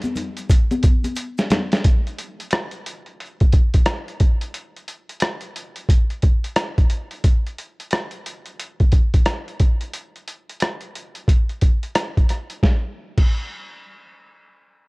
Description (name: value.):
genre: hip hop.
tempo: 89 BPM.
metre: 4/4.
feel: swing 62% on 16ths.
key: none.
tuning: none.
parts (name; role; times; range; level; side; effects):
boom bap sampler-style drum kit; drums; 0.0-13.3 s; crash cymbal, hi-hat, kick drum, rim click, snare drum; -17 LUFS; equal; none.
congas and maracas; percussion; 0.0-1.8 s; none; -26 LUFS; left 2 dB; none.
room: little or no reverb.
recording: worn, warbling old tape, cassette tape, warbly pitch drift.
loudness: -18 LUFS.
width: side -29 dB against mid.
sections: 0.0-1.8 A section; 1.8-12.6 B section; 12.6-14.9 C section.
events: drum fill 1.2-1.8.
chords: none.